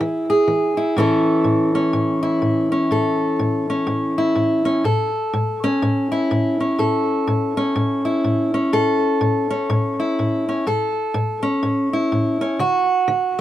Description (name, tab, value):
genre	blues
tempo	124 BPM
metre	4/4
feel	swing 60% on 8ths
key	A major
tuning	A4 = 438 Hz
part	fingerpicked steel-string acoustic guitar	solo	0.0-13.4 s	A2 to A4	-17 LUFS	equal	slapback echo
room	little or no reverb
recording	recorded outdoors, with no room sound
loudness	-17 LUFS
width	side -13 dB against mid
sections	0.0-4.8 A section; 4.8-13.4 B section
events	none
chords	0.0 E; 1.0 A; 12.6 D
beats	0.01 0.49 | 0.97 1.46 1.94 2.43 | 2.91 3.40 3.88 4.37 | 4.85 5.33 5.82 6.30 | 6.79 7.27 7.76 8.24 | 8.73 9.21 9.70 10.18 | 10.66 11.15 11.63 12.11 | 12.60 13.08